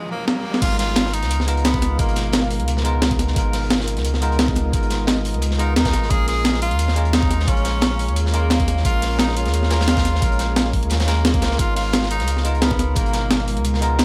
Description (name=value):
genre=liquid drum and bass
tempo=175 BPM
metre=4/4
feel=swing 53% on 16ths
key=G# dorian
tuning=A4 = 440 Hz
part: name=breathy tenor saxophone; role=melody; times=0.0-2.7, 5.6-13.6 s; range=A#3 to G#4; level=-29 LUFS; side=equal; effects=dub echo
part: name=bell-like tine electric piano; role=accompaniment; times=0.0-14.0 s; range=B2 to A#4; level=-29 LUFS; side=equal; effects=lush chorus, dub echo
part: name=riser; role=sound effects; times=0.0-0.6 s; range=none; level=-33 LUFS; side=equal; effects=none
part: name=breakbeat sampler-style drum kit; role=drums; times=0.3-14.0 s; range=crash cymbal, hi-hat, snare drum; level=-24 LUFS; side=equal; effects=small room ambience
part: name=ethereal airy pad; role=sustained chords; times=1.3-14.0 s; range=G#3 to E#5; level=-36 LUFS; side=equal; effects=none
part: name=warm sub bass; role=bass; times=0.6-14.0 s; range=G#1 to D#2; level=-24 LUFS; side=equal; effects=none
part: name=crunchy breakbeat drum kit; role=drums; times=0.6-14.0 s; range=hi-hat, snare drum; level=-30 LUFS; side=equal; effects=high-pass filter on hats, low-pass filter on hats, small room ambience, high-pass filter on snare, low-pass filter on snare, high-pass filter on room, low-pass filter on room
part: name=electronic kick drum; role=drums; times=0.6-13.0 s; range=none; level=-24 LUFS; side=equal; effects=overdrive, small room ambience
part: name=bongos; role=percussion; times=12.7-12.8 s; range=none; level=-33 LUFS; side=equal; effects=none
room=light reverb, small room ambience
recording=none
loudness=-19 LUFS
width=mono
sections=0.6-14.0 A section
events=break 0.0-0.6; riser 0.0-0.6; drum fill 0.3-0.6; drop 0.6-14.0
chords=0.0 A#m7; 0.6 G#m69; 6.1 A#m7; 11.6 G#m69